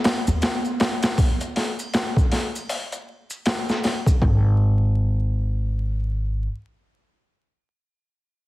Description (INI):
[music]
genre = trip hop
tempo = 79 BPM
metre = 4/4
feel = swing 60% on 16ths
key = unclear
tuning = A4 = 438 Hz
[part]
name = warbly tape-like pad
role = sustained chords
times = 0.0-1.2 s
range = B3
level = -31 LUFS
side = right 2 dB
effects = chorus, built-in reverb
[part]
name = boom bap sampler-style drum kit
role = drums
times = 0.0-4.4 s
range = hi-hat, kick drum, snare drum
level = -21 LUFS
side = equal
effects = overdrive
[part]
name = triangle and maracas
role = percussion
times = 0.0-4.2 s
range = none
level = -38 LUFS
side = right 1 dB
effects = none
[part]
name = upright bass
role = bass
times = 0.3-6.5 s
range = G#1 to D#2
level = -20 LUFS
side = equal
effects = tube saturation
[sound]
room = digital ambience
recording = heavily compressed radio sound, vinyl crackle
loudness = -20 LUFS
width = side -18 dB against mid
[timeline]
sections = 0.0-4.2 A section; 4.2-7.3 B section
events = none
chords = none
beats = 0.42 | 1.18 1.94 2.70 3.46 | 4.22 4.98 5.74